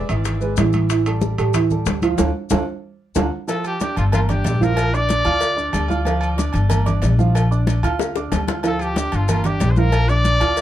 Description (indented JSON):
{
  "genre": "latin, salsa",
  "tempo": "186 BPM",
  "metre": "4/4",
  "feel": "straight",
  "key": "D minor",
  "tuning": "A4 = 438 Hz",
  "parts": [
    { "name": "clear trumpet", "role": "melody", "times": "0.0-0.1, 3.5-5.9, 8.7-10.6 s", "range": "F4 to D5", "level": "-24 LUFS", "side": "equal", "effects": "tape echo" },
    { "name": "dark upright piano", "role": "accompaniment", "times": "0.0-10.6 s", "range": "E3 to F6", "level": "-23 LUFS", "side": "right 5 dB", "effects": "none" },
    { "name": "upright bass", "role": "bass", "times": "0.0-10.6 s", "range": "G1 to A2", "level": "-19 LUFS", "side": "left 1 dB", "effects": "none" },
    { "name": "maracas", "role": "percussion", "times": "0.1-10.6 s", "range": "none", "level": "-36 LUFS", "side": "left 10 dB", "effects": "none" },
    { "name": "timbales and agogo bells", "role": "percussion", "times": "0.1-10.6 s", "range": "none", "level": "-29 LUFS", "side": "right 2 dB", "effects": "none" },
    { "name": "bongos and cowbell", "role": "percussion", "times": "0.3-10.6 s", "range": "none", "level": "-27 LUFS", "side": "left 5 dB", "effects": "none" },
    { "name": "congas", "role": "percussion", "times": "0.3-10.6 s", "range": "none", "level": "-25 LUFS", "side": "left 1 dB", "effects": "none" }
  ],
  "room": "light reverb",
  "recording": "dark, warm production",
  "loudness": "-16 LUFS",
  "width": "side -12 dB against mid",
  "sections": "0.0-3.5 A section; 3.5-10.6 B section",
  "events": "band accent 2.2-3.5; drum fill 3.0-3.5, 8.0-8.6",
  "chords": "0.0 E; 0.9 A7sus4; 2.2 Dm; 4.1 Gm7; 4.8 Bb; 5.4 Dm; 6.7 Gm7; 7.3 Bb; 8.0 Dm; 9.3 Gm7; 9.9 Bb",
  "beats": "0.25 0.58 | 0.90 1.22 1.54 1.87 | 2.19 2.51 2.83 3.16 | 3.48 3.80 4.12 4.45 | 4.77 5.09 5.41 5.74 | 6.06 6.38 6.70 7.03 | 7.35 7.67 7.99 8.32 | 8.64 8.96 9.28 9.61 | 9.93 10.25 10.57"
}